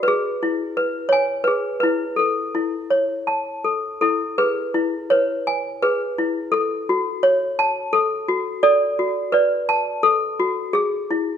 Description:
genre	children's music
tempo	85 BPM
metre	3/4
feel	rubato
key	unclear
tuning	A4 = 439 Hz
part	toy piano	solo	0.0-11.4 s	E4 to A5	-18 LUFS	left 1 dB	none
room	moderate recital hall reverb, RT60 1.3 s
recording	dark, warm production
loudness	-18 LUFS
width	side -8 dB against mid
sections	0.0-4.4 A section; 4.4-11.4 B section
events	none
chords	0.1 E; 2.2 A; 4.4 E; 6.5 F#m; 8.6 D; 10.8 E

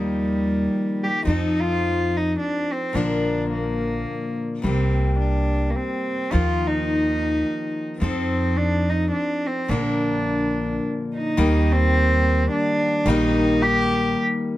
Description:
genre	acoustic folk duo or small band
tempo	107 BPM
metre	3/4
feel	swing 61% on 8ths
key	Eb major from 11.4 s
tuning	A4 = 440 Hz
part	warm cello	melody	0.0-14.2 s	G3 to G4	-23 LUFS	right 1 dB	none
part	picked steel-string acoustic guitar	accompaniment	0.0-14.6 s	Bb2 to Bb4	-25 LUFS	left 3 dB	none
part	upright bass	bass	0.0-14.1 s	Bb1 to F2	-23 LUFS	right 1 dB	none
room	little or no reverb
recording	close, detailed microphones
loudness	-19 LUFS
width	side -15 dB against mid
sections	0.0-11.4 A section; 11.4-14.6 B section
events	break 10.8-11.4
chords	0.0 Ebadd9; 1.3 F7; 3.0 Bb; 4.6 C5; 6.3 Ebadd9; 8.0 F7; 9.7 Bb; 11.4 Eb

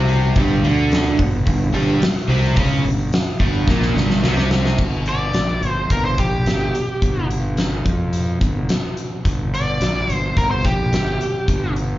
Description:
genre	blues rock power trio and southern rock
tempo	108 BPM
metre	4/4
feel	straight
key	G minor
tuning	A4 = 440 Hz
part	crunchy overdriven guitar	riff	0.0-4.8 s	G2 to D4	-20 LUFS	right 1 dB	slapback echo
part	fuzz fingered electric bass	bass	0.0-12.0 s	G1 to F2	-20 LUFS	equal	overdrive
part	huge arena drum kit	drums	0.1-11.9 s	crash cymbal, hi-hat, kick drum, snare drum	-21 LUFS	equal	none
part	overdriven slide guitar	melody	5.1-11.7 s	G4 to D5	-23 LUFS	equal	plate reverb, slapback echo
room	light reverb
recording	live gig heard through the venue's PA, club reverb, nothing above 7.4 kHz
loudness	-16 LUFS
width	side -15 dB against mid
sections	0.0-4.8 A section; 4.8-12.0 B section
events	drum fill 3.7-4.8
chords	0.0 Gm

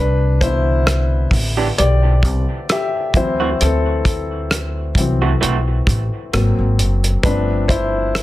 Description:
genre	R&B, neo-soul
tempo	66 BPM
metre	4/4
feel	swing 55% on 16ths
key	C major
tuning	A4 = 440 Hz
part	warm concert grand piano	accompaniment	0.0-8.2 s	B2 to E5	-20 LUFS	left 3 dB	plate reverb
part	upright bass	bass	0.0-8.2 s	Gb1 to D2	-17 LUFS	equal	none
part	cloth-damped thuddy drum kit	drums	0.4-8.2 s	hi-hat, kick drum, rim click	-18 LUFS	equal	soft clipping on snare
part	electric guitar through a small old amp	second line	1.6-5.6 s	E3 to G4	-23 LUFS	right 6 dB	tape echo, plate reverb
room	light reverb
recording	dense, heavily limited modern master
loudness	-14 LUFS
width	side -16 dB against mid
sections	0.0-8.2 A section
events	grand piano solo 0.0-8.2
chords	0.0 Cmaj9; 3.1 D9; 6.3 Ab9; 7.2 G9sus4

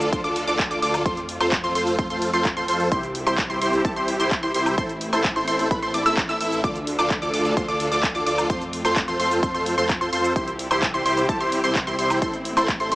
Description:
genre	EDM, festival progressive house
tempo	129 BPM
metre	4/4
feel	straight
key	unclear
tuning	A4 = 440 Hz
part	clear symphonic string section	sustained chords	0.0-12.9 s	C3 to A4	-31 LUFS	equal	sidechain pumping
part	wide unison pluck	arpeggios	0.0-12.9 s	A5 to E6	-25 LUFS	equal	cassette tape, sidechain pumping, tape echo
part	dense compressed supersaw	riff	0.0-12.9 s	E4 to E5	-24 LUFS	equal	sidechain pumping, tape echo
part	wide detuned saw bass	bass	0.0-12.9 s	A1 to F2	-32 LUFS	equal	chorus, sidechain pumping
part	big-room dance drum kit	drums	0.0-12.9 s	cabasa, handclaps, hi-hat, woodblock	-28 LUFS	equal	none
part	sub drop	sound effects	0.0-1.1 s	none	barely audible	none	none
part	electronic kick drum	drums	0.1-12.8 s	none	-27 LUFS	equal	none
room	light reverb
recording	small speaker sound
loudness	-20 LUFS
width	side -20 dB against mid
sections	0.0-12.9 A section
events	impact 0.0-1.1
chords	0.0 Dm; 1.1 F; 2.9 C; 4.8 Am; 6.6 Dm; 8.5 F; 10.4 C; 12.2 Am

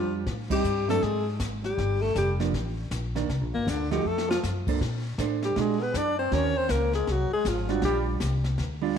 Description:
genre	jazz, small-group swing and bop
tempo	158 BPM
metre	4/4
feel	swing 63% on 8ths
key	Bb major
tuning	A4 = 445 Hz
part	clear alto saxophone	melody	0.0-8.0 s	Bb3 to D5	-28 LUFS	left 6 dB	none
part	brilliant trombone	second line	0.0-8.1 s	Bb2 to D4	-33 LUFS	right 7 dB	none
part	hollow-body jazz guitar	accompaniment	0.0-9.0 s	Eb3 to C5	-31 LUFS	right 10 dB	none
part	upright bass	bass	0.0-9.0 s	F1 to Bb2	-29 LUFS	left 1 dB	none
part	jazz brush drum kit	drums	0.3-9.0 s	brushed snare drum, crash cymbal, hi-hat, kick drum, ride cymbal, snare drum	-35 LUFS	left 1 dB	none
room	moderate echo chamber reverb, RT60 1.4 s, small room ambience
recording	1960s-style stereo with parts hard left and right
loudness	-24 LUFS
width	side -8 dB against mid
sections	0.0-9.0 A section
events	band accent 0.5; drum fill 4.1-4.4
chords	0.3 Am7b5; 1.0 N.C.; 1.8 Gm7; 3.3 Cm9; 4.1 F; 4.8 Bbmaj9; 5.6 Bbaug7; 6.3 Ebm7; 7.1 Ab; 7.8 Bb6

